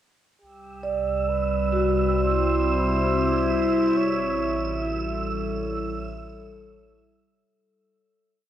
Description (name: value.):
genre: ambient.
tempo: 68 BPM.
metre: 4/4.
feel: straight.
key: C lydian.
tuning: A4 = 441 Hz.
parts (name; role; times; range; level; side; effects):
warm flugelhorn; melody; 0.4-4.8 s; G4 to C#5; -31 LUFS; equal; cassette tape, plate reverb, tape echo.
evolving wavetable pad; sustained chords; 1.1-7.5 s; G3 to E5; -26 LUFS; equal; phaser, built-in reverb, cassette tape, plate reverb.
round analog bass; bass; 0.4-7.4 s; A1 to C2; -30 LUFS; equal; none.
organ-like drone; drone; 0.9-7.6 s; C3 to G3; -36 LUFS; equal; ensemble chorus, built-in reverb, cassette tape.
wind-like tuned noise texture; texture; 1.0-7.5 s; E6; -32 LUFS; right 4 dB; built-in reverb, cassette tape.
vibraphone with medium mallets; arpeggios; 0.8-7.9 s; E4 to D5; -27 LUFS; right 1 dB; cassette tape, tape echo.
room: wet booth ambience, RT60 0.2 s.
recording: home recording on cassette.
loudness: -21 LUFS.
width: side -11 dB against mid.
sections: 0.4-7.5 A section.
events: fade-in on flugelhorn 0.4-7.5; fade-out on vibraphone 0.4-7.5; fade-out on synth drone 0.4-7.5; filter sweep on ambient pad 0.4-7.5; fade-out 4.0-7.5.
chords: 0.4 C; 4.0 A7.